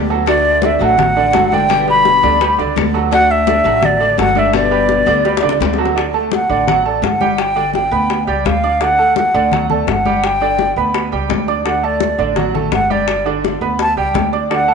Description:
latin, Cuban son and guajira; 169 BPM; 4/4; straight; D major; A4 = 441 Hz
nylon-string guitar; accompaniment; 0.0-6.0 s; B2 to G4; -21 LUFS; left 10 dB
bright concert grand piano; arpeggios; 0.0-14.7 s; D3 to D6; -18 LUFS; right 8 dB
upright bass; bass; 0.0-14.7 s; G1 to D2; -22 LUFS; right 1 dB
bongos; percussion; 0.1-14.7 s; -22 LUFS; left 11 dB
congas; percussion; 0.1-14.7 s; -23 LUFS; left 8 dB
hollow concert flute; melody; 0.3-14.7 s; D5 to B5; -15 LUFS; equal
moderate echo chamber reverb, RT60 1.5 s, studio reverb; 1960s-style stereo with parts hard left and right, nothing above 10.9 kHz; -12 LUFS; side -5 dB against mid
0.0-6.0 A section; 6.0-14.7 B section
drum fill 5.2-6.0; flute solo 6.0-14.7
0.3 D; 1.7 G; 3.1 D; 4.5 G; 6.0 D; 7.4 G; 8.8 D; 10.2 G; 11.7 D; 13.1 G
| 0.27 0.63 0.98 1.34 | 1.69 2.05 2.40 2.76 | 3.12 3.47 3.83 4.18 | 4.54 4.89 5.25 5.60 | 5.96 6.32 6.67 7.03 | 7.38 7.74 8.10 8.45 | 8.81 9.16 9.52 9.88 | 10.23 10.59 10.94 11.30 | 11.65 12.01 12.37 12.72 | 13.08 13.44 13.79 14.15 | 14.50

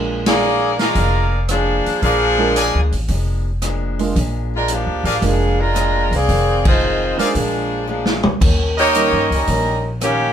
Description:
jazz, big band swing; 113 BPM; 4/4; swing 69% on 8ths; Bb mixolydian; A4 = 440 Hz
picked steel-string acoustic guitar; accompaniment; 0.0-10.3 s; F2 to G4; -27 LUFS; left 3 dB
warm baby grand piano; accompaniment; 0.0-9.3 s; Eb3 to Bb4; -23 LUFS; right 5 dB
upright bass; bass; 0.0-10.3 s; F1 to G2; -20 LUFS; equal
warm saxophone section; melody; 0.3-10.3 s; Eb3 to D5; -18 LUFS; equal
swinging big-band drum kit; drums; 0.3-10.2 s; crash cymbal, hi-hat, kick drum, ride cymbal, rim click, snare drum, toms; -21 LUFS; equal
brilliant trumpet section; stabs; 0.8-9.4 s; G4 to Ab5; -20 LUFS; left 1 dB
moderate studio reverb, RT60 0.6 s; band playing live in one room; -15 LUFS; side -9 dB against mid
0.0-10.3 A section
band accent 0.2, 6.6; drum fill 7.9-8.4
0.0 Bb7; 6.3 Fm7; 7.4 Bb7; 8.4 Eb7
0.42 0.96 1.49 | 2.02 2.56 3.09 3.62 | 4.15 4.69 5.22 5.75 | 6.29 6.82 7.35 7.88 | 8.42 8.95 9.48 10.02

